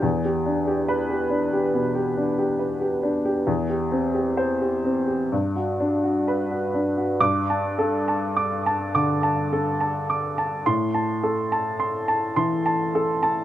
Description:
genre	neoclassical minimalist piano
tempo	63-72 BPM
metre	4/4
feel	rubato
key	G major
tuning	A4 = 440 Hz
part	warm upright piano	solo	0.0-13.4 s	E2 to D6	-21 LUFS	equal	slapback echo
room	light reverb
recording	recorded outdoors, with no room sound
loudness	-21 LUFS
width	side -12 dB against mid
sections	0.0-7.2 A section; 7.2-13.4 B section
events	none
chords	0.0 Em7; 3.5 C/E; 5.3 Gmaj7; 7.2 Gsus2; 10.7 Am

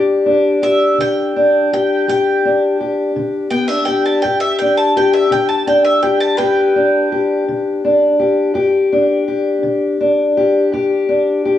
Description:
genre	acoustic country blues, solo or duo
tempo	55 BPM (dotted quarters)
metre	12/8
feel	straight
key	G major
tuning	A4 = 440 Hz
part	bowl-back mandolin	melody	0.0-7.8 s	B4 to A5	-19 LUFS	right 1 dB	cassette tape
part	fingerpicked steel-string acoustic guitar	accompaniment	0.0-11.6 s	G2 to G4	-13 LUFS	left 2 dB	cassette tape
room	moderate lush hall reverb, RT60 2.2 s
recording	home recording on cassette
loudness	-12 LUFS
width	side -11 dB against mid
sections	0.0-11.6 A section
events	none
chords	0.0 G5

